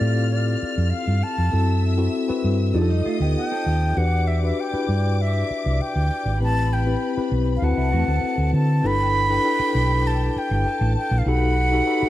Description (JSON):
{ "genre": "soul", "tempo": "99 BPM", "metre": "4/4", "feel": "straight", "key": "G major", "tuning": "A4 = 440 Hz", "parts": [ { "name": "breathy concert flute", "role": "melody", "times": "0.0-12.1 s", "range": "D5 to B5", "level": "-25 LUFS", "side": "right 1 dB", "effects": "tape echo" }, { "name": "warm studio string section", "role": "second line", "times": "0.0-12.1 s", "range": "F4 to F6", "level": "-34 LUFS", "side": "left 4 dB", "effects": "tape echo" }, { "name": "tine electric piano", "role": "accompaniment", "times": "0.0-12.1 s", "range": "C4 to C5", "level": "-25 LUFS", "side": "left 3 dB", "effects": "medium tremolo" }, { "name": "hollow-body short-scale fingered electric bass", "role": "bass", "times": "0.0-12.1 s", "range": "G1 to D3", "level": "-21 LUFS", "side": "equal", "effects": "none" }, { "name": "mellow electric guitar", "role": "riff", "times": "2.7-4.0, 7.8-8.8 s", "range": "F3 to A4", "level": "-30 LUFS", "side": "right 6 dB", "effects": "none" } ], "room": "light reverb, studio reverb", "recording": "dark, warm production", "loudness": "-19 LUFS", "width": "side -14 dB against mid", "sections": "0.0-8.8 A section; 8.8-12.1 B section", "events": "none", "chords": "0.0 Fmaj7; 1.5 F#m7b5; 2.8 F13; 4.0 Em7; 6.4 Am9; 7.6 D13; 8.8 G69; 11.3 B7b13" }